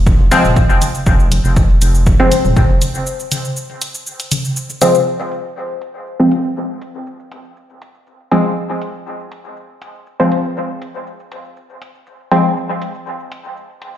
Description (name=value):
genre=dub techno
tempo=120 BPM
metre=4/4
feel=straight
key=F minor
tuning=A4 = 440 Hz
part: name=round analog bass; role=bass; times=0.0-2.8 s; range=Eb1 to F1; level=-14 LUFS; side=equal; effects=sidechain pumping
part: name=electronic kick drum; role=drums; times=0.1-2.7 s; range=none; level=-13 LUFS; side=equal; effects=overdrive
part: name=electronic shaker and hi-hat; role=drums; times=0.1-14.0 s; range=none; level=-24 LUFS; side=right 1 dB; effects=overdrive, low-pass filter on hats, low-pass filter on perc
part: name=filtered dub chord stab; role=stabs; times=0.3-12.5 s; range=F3 to C4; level=-16 LUFS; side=left 1 dB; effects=chorus, phaser, sidechain pumping, dub echo
part: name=electronic toms and congas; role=percussion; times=0.3-4.9 s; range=none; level=-23 LUFS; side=left 2 dB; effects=sidechain pumping on toms, sidechain pumping on perc, dub echo
room=moderate digital room reverb, RT60 1.1 s, digital ambience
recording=played on a big sound system in a bare room, stone room reverb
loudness=-13 LUFS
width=side -11 dB against mid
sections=0.0-5.1 A section; 5.1-14.0 B section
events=break 3.1-5.1; filter sweep on synth stab 5.1-14.0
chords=0.0 Fm